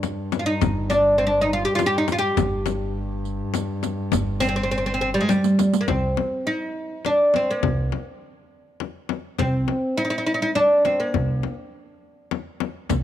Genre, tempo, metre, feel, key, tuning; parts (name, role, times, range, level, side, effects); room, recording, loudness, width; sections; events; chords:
Arabic maqam ensemble; 103 BPM; 3/4; straight; G maqam hijaz, C maqam rast from 5.9 s; A4 = 440 Hz
warm double bass; drone; 0.0-5.9 s; G2; -30 LUFS; equal; stereo widening
frame drum; percussion; 0.0-13.0 s; -26 LUFS; left 8 dB
riq; percussion; 0.0-5.9, 12.9-13.0 s; -30 LUFS; right 15 dB
oud; melody; 0.4-11.5 s; G3 to G4; -20 LUFS; equal
upright bass; bass; 0.6-13.0 s; G1 to C2; -27 LUFS; right 1 dB
light reverb, small room reverb; 1960s-style stereo with parts hard left and right; -20 LUFS; side -11 dB against mid
0.0-5.9 A section; 5.9-13.0 B section
drum fill 5.3-5.9